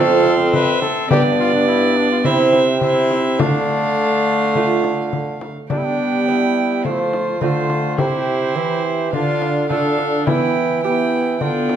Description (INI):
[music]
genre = classical, renaissance-style consort dance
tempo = 105 BPM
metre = 4/4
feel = straight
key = D dorian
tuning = A4 = 439 Hz
[part]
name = warm cornet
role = melody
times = 0.0-11.8 s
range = D4 to B4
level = -23 LUFS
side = left 4 dB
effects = none
[part]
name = rich violin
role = second line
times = 0.0-11.8 s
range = C5 to G5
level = -24 LUFS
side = right 7 dB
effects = none
[part]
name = lute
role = accompaniment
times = 0.0-11.8 s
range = F2 to G4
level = -23 LUFS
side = right 6 dB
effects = none
[part]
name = rich viola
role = accompaniment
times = 0.0-11.8 s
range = A3 to E4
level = -22 LUFS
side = left 2 dB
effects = none
[part]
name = mellow bassoon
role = bass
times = 0.0-11.8 s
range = F2 to G3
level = -20 LUFS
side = right 2 dB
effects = none
[part]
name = frame drum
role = percussion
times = 0.3-11.8 s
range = none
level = -24 LUFS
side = left 3 dB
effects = none
[sound]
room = wet recital hall reverb, RT60 1.4 s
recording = none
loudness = -15 LUFS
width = side -9 dB against mid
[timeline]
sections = 0.0-5.7 A section; 5.7-11.8 B section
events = none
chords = 0.0 F; 1.1 G; 2.2 C; 3.4 Dm; 5.7 G; 6.9 F; 8.0 C; 9.1 Dm; 10.3 Em